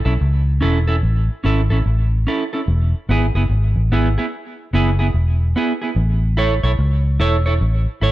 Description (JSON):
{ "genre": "roots reggae", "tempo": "73 BPM", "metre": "4/4", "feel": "swing 63% on 16ths", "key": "A major", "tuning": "A4 = 440 Hz", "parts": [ { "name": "vintage muted fingered electric bass", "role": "bass", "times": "0.0-8.1 s", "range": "E1 to C#2", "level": "-16 LUFS", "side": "equal", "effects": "none" }, { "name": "clean electric guitar", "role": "accompaniment", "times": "0.1-8.1 s", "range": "B3 to C#5", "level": "-22 LUFS", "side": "right 3 dB", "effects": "tape echo" } ], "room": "digital ambience", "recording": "dark, warm production", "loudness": "-15 LUFS", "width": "side -16 dB against mid", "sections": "0.0-8.1 A section", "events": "none", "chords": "0.0 A; 2.7 E; 6.0 A", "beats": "0.20 1.03 1.85 | 2.67 3.49 4.32 5.14 | 5.96 6.78 7.60" }